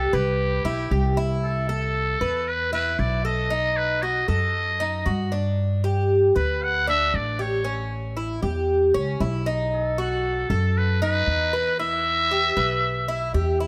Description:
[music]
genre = latin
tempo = 116 BPM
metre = 4/4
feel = straight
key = unclear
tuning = A4 = 440 Hz
[part]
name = trumpet with metal mute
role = melody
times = 0.0-13.6 s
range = G4 to F#5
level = -27 LUFS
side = equal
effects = none
[part]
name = Cuban tres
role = arpeggios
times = 0.0-13.7 s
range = C#4 to B4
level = -28 LUFS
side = equal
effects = none
[part]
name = upright bass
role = bass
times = 0.0-13.7 s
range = A1 to G2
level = -28 LUFS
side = equal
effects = none
[sound]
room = light reverb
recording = none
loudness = -23 LUFS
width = mono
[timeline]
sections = 0.0-13.7 A section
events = none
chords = 0.0 Cmaj7; 1.4 Amadd9/C; 3.5 B7; 5.6 G; 7.7 A7; 9.7 B7; 11.8 Em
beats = 0.39 0.91 | 1.43 1.95 2.47 2.99 | 3.51 4.02 4.54 5.06 | 5.58 6.10 6.62 7.13 | 7.65 8.17 8.69 9.21 | 9.72 10.24 10.76 11.28 | 11.79 12.31 12.83 13.35

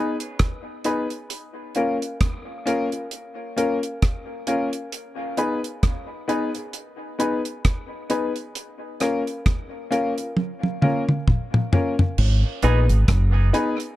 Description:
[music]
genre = dub reggae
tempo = 66 BPM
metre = 4/4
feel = swing 58% on 16ths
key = G# dorian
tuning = A4 = 439 Hz
[part]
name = clear upright piano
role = stabs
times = 0.0-13.7 s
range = A#3 to B4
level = -25 LUFS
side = left 2 dB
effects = dub echo
[part]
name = deep reggae drum kit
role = drums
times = 0.2-14.0 s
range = crash cymbal, hi-hat, kick drum, rim click, toms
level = -22 LUFS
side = equal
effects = none
[part]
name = deep dub fingered electric bass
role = bass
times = 12.2-13.5 s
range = F#1 to A#1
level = -17 LUFS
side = equal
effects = none
[part]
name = semi-hollow electric guitar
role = accompaniment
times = 12.6-12.8 s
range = B3 to G#4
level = -31 LUFS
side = right 7 dB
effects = dub echo
[sound]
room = light reverb, studio ambience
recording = dark, warm production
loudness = -20 LUFS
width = side -15 dB against mid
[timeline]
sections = 0.0-12.2 A section; 12.2-14.0 B section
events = break 0.0-12.2; drum fill 10.4-12.2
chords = 0.0 G#m; 1.3 A#m; 4.9 G#m; 8.6 A#m; 12.2 G#m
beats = 0.40 | 1.30 2.21 3.12 4.02 | 4.93 5.84 6.74 7.65 | 8.56 9.46 10.37 11.27 | 12.18 13.09

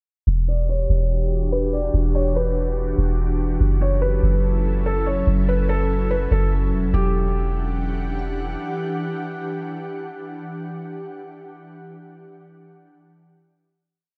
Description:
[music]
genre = hip hop, atmospheric cloud-rap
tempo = 144 BPM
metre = 4/4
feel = half-time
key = E dorian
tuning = A4 = 440 Hz
[part]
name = ethereal airy pad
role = sustained chords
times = 0.8-11.0 s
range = E3 to F#5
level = -30 LUFS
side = equal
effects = ensemble chorus, built-in reverb, low-pass filter
[part]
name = soft 808-style bass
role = bass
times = 0.3-8.6 s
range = E1 to F#1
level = -23 LUFS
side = equal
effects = none
[part]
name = felt-muted upright piano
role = melody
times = 0.5-8.1 s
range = G4 to D5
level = -29 LUFS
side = equal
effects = low-pass filter, digital delay
[sound]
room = light reverb, small room reverb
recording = none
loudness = -22 LUFS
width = mono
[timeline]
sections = 0.3-6.9 breakdown; 6.9-10.3 final chord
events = filter sweep 0.3-6.9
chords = 0.3 Em9; 3.6 F#m7; 6.9 Em9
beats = | 0.27 0.69 1.10 1.52 | 1.94 2.35 2.77 3.19 | 3.60 4.02 4.44 4.85 | 5.27 5.69 6.10 6.52 | 6.94 7.35 7.77 8.19 | 8.60 9.02 9.44 9.85

